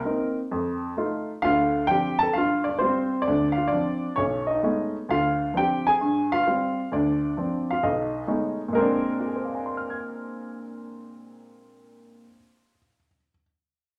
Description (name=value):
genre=solo jazz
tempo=131 BPM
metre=4/4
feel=swing 68% on 8ths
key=Bb mixolydian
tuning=A4 = 440 Hz
part: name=warm upright piano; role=solo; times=0.0-13.4 s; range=B1 to Ab6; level=-25 LUFS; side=equal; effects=none
room=wet large studio reverb, RT60 0.7 s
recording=none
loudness=-25 LUFS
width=mono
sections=0.0-1.4 A section; 1.4-8.7 B section; 8.7-12.4 C section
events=none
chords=0.0 Cm7; 0.5 F7; 1.4 Dm7; 2.3 G7sus4; 3.3 Dm7; 4.2 B13; 5.1 Dm7; 6.0 G7sus4; 6.9 Dm7; 7.8 B13; 8.7 Bb9